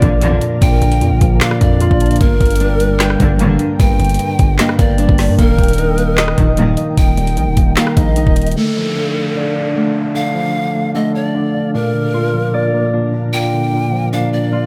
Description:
hip hop, trap; 151 BPM; 4/4; half-time; D phrygian; A4 = 440 Hz
breathy polished pan flute; second line; 0.0-14.7 s; A4 to G5; -24 LUFS; equal; delay
mellow tine electric piano; accompaniment; 0.0-14.7 s; G2 to Eb5; -20 LUFS; equal; low-pass filter
glassy FM pad; sustained chords; 0.0-14.7 s; D4 to G5; -29 LUFS; equal; ensemble chorus, built-in reverb, low-pass filter
Celtic harp; arpeggios; 0.0-14.7 s; A3 to G5; -23 LUFS; equal; low-pass filter, delay
warm symphonic string section; stabs; 0.0-0.6, 3.2-3.8, 6.4-7.0 s; Bb1 to Eb3; -21 LUFS; equal
distorted 808-style bass; bass; 0.0-8.6 s; Eb1 to G2; -19 LUFS; equal; distortion
trap drum kit; drums; 0.0-8.6 s; handclaps, hi-hat, kick drum, rim click, snare drum; -17 LUFS; equal
downlifter; sound effects; 8.6-11.7 s; -31 LUFS; equal
light reverb; -14 LUFS; mono
0.0-8.6 A section; 8.6-14.7 B section
filter sweep 8.6-14.7
0.0 Bb; 2.2 Gm; 5.4 Eb; 8.6 Dm; 11.7 Bb
0.22 | 0.62 1.01 1.41 1.81 | 2.21 2.60 3.00 3.40 | 3.80 4.19 4.59 4.99 | 5.39 5.78 6.18 6.58 | 6.97 7.37 7.77 8.17 | 8.56 8.96 9.36 9.76 | 10.15 10.55 10.95 11.35 | 11.74 12.14 12.54 12.94 | 13.33 13.73 14.13 14.53

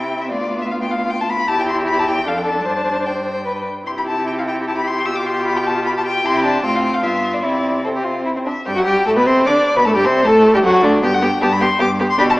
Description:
quick classical-period movement for string quartet; 152 BPM; 3/4; rubato; C major, G major from 8.7 s; A4 = 439 Hz
clear violin; melody; 0.0-12.3 s; C5 to E6; -20 LUFS; left 2 dB
rich violin; second line; 0.0-12.3 s; C4 to D5; -19 LUFS; left 1 dB
rich viola; accompaniment; 0.0-12.4 s; D3 to F4; -21 LUFS; right 1 dB
rich cello; bass; 0.0-12.4 s; D2 to D3; -24 LUFS; right 1 dB
wet scoring stage reverb, RT60 2.0 s; small speaker sound; -15 LUFS; side -20 dB against mid
0.0-8.7 A section; 8.7-12.4 B section
0.3 Bdim/D; 1.5 Emadd11; 2.3 Dm/F; 2.7 Gsus4; 3.9 C; 5.1 G7/B; 6.2 C; 6.6 F/A; 7.0 G7; 7.4 C; 8.7 G; 9.9 D7; 11.0 G
| 0.31 0.71 1.10 | 1.49 1.88 2.27 | 2.66 3.06 3.46 | 3.87 4.28 4.67 | 5.07 5.46 5.86 | 6.25 6.64 7.03 | 7.44 7.85 8.26 | 8.67 9.07 9.46 | 9.86 10.25 10.63 | 11.03 11.42 11.81 | 12.19

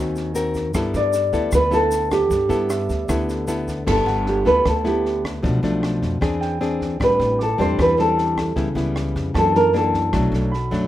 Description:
bossa nova; 153 BPM; 4/4; straight; G major; A4 = 443 Hz
clear concert grand piano; accompaniment; 0.0-10.9 s; Eb5 to D6; -35 LUFS; right 5 dB; plate reverb
nylon-string guitar; accompaniment; 0.0-10.9 s; F#2 to Bb4; -23 LUFS; left 2 dB
upright bass; bass; 0.0-10.9 s; G1 to G2; -26 LUFS; right 1 dB
compact cocktail drum kit; drums; 0.2-10.8 s; crash cymbal, kick drum, rim click, snare drum; -29 LUFS; right 1 dB
tube shaker; percussion; 0.2-3.9 s; -39 LUFS; left 2 dB
nylon-string guitar; melody; 1.0-10.3 s; G4 to D5; -19 LUFS; right 1 dB; plate reverb
moderate studio reverb, RT60 0.6 s; rough home demo mix; -17 LUFS; side -13 dB against mid
0.0-3.9 A section; 3.9-10.9 B section
nylon-string guitar solo 3.9-10.9
0.0 Ab9; 0.7 G69; 5.4 Bm7b5; 6.2 E7alt; 7.0 Am11; 8.6 C#m7b5; 9.3 F#7alt; 10.1 Bm7
0.35 | 0.74 1.13 1.52 1.91 | 2.30 2.69 3.09 3.48 | 3.87 4.26 4.65 5.04 | 5.43 5.83 6.22 6.61 | 7.00 7.39 7.78 8.18 | 8.57 8.96 9.35 9.74 | 10.13 10.53

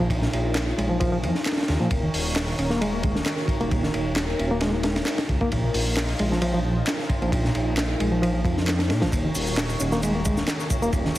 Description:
breakbeat, breaks; 133 BPM; 4/4; straight; Eb minor; A4 = 440 Hz
phased analog pad; sustained chords; 0.0-11.2 s; Eb3 to Db5; -30 LUFS; equal; phaser, chorus, sidechain pumping
reed electric piano; riff; 0.0-11.1 s; Bb2 to Db4; -27 LUFS; equal; overdrive, fast tremolo, vintage 12-bit sampler grit, digital delay
dark detuned saw bass; bass; 0.0-11.2 s; Eb1 to Bb2; -26 LUFS; equal
crunchy breakbeat drum kit; drums; 0.1-11.2 s; hi-hat, kick drum, ride cymbal, snare drum; -26 LUFS; equal
electronic handclaps and shaker; drums; 0.6-11.2 s; -32 LUFS; equal; overdrive
light reverb; heavily compressed radio sound; -21 LUFS; side -15 dB against mid
0.0-11.2 A section
0.0 Bbsus4; 1.9 Ebm7; 5.5 Bbsus4; 9.1 Ebm7
| 0.10 0.56 1.01 1.46 | 1.91 2.36 2.81 3.26 | 3.71 4.17 4.62 5.07 | 5.52 5.97 6.42 6.87 | 7.32 7.78 8.23 8.68 | 9.13 9.58 10.03 10.48 | 10.93

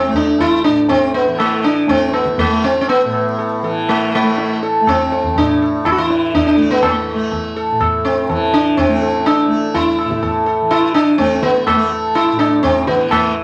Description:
indian classical, Hindustani; 123 BPM; 4/4; straight; A raga bhimpalasi; A4 = 440 Hz
sitar; melody; 0.0-13.4 s; A3 to A4; -17 LUFS; equal
tanpura; drone; 0.0-13.4 s; A2 to A3; -24 LUFS; equal
tabla; percussion; 0.1-13.3 s; -23 LUFS; equal
moderate studio reverb, RT60 0.8 s; vinyl crackle; -15 LUFS; mono
0.0-13.4 A section
speeding up 0.0-13.4
0.39 | 0.89 1.39 1.89 2.39 | 2.88 3.38 3.88 4.37 | 4.86 5.36 5.85 6.34 | 6.83 7.32 7.80 8.29 | 8.78 9.26 9.75 10.23 | 10.71 11.19 11.67 12.15 | 12.63 13.11

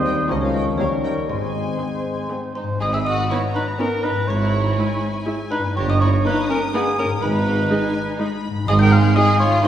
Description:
cinematic, playful, whimsical film cue; 122 BPM; 3/4; straight; G# minor; A4 = 435 Hz
xylophone with rubber mallets; melody; 0.0-9.7 s; C5 to G6; -30 LUFS; left 3 dB
mellow clarinet; second line; 0.0-2.6 s; Ab4 to C5; -34 LUFS; equal
mellow cor anglais; second line; 0.0-9.7 s; G#4 to G5; -24 LUFS; right 1 dB
mellow flute section; second line; 0.0-2.5 s; C6 to Db6; -33 LUFS; left 1 dB
warm studio violin section; second line; 0.0-9.7 s; B3 to Bb4; -26 LUFS; left 2 dB
rich symphonic viola section; accompaniment; 0.0-9.7 s; F3 to E4; -27 LUFS; equal
warm bassoon; accompaniment; 0.0-2.6 s; F3 to Ab3; -31 LUFS; left 1 dB
warm French horn section; sustained chords; 0.0-2.5 s; G3 to Db4; -29 LUFS; left 4 dB
concert harp; arpeggios; 0.0-9.7 s; G2 to D#5; -27 LUFS; left 2 dB
mellow tuba; bass; 0.0-9.1 s; G1 to Eb2; -27 LUFS; right 1 dB
rich studio cello section; bass; 0.0-9.1 s; Db2 to Ab2; -24 LUFS; right 3 dB
rich studio double bass section; bass; 0.0-9.1 s; G1 to Eb2; -25 LUFS; right 2 dB
warm studio violin section; melody; 0.1-9.7 s; Eb5 to D#6; -34 LUFS; left 4 dB
wet scoring stage reverb, RT60 1.9 s; heard from further back in the room; -17 LUFS; side -10 dB against mid
0.0-2.8 A section; 2.8-9.7 B section
0.3 Bbm/Db; 0.8 Eb7; 1.3 Ab; 2.8 G#m; 4.3 C#m/G#; 5.8 D#7/G; 7.2 G#m
0.30 0.79 | 1.29 1.80 2.30 | 2.81 3.30 3.79 | 4.29 4.78 5.27 | 5.76 6.25 6.74 | 7.22 7.71 8.20 | 8.68 9.17 9.65

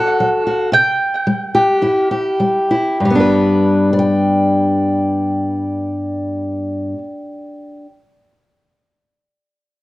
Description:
folk; 97-117 BPM; 4/4; straight; G major; A4 = 440 Hz
mandolin; melody; 0.0-2.4 s; F#5 to G5; -17 LUFS; right 2 dB; digital delay
fingerpicked steel-string acoustic guitar; accompaniment; 0.0-7.9 s; G2 to G5; -14 LUFS; left 1 dB
light reverb; worn, warbling old tape, cassette tape, warbly pitch drift; -14 LUFS; side -18 dB against mid
0.0-3.0 A section; 3.0-8.0 B section
slowing down 0.0-3.0
0.0 D (rootless); 0.7 C; 3.0 G
0.20 | 0.72 1.26 1.81 2.39 | 3.00 3.62 4.24 4.86 | 5.48 6.10 6.72 7.33

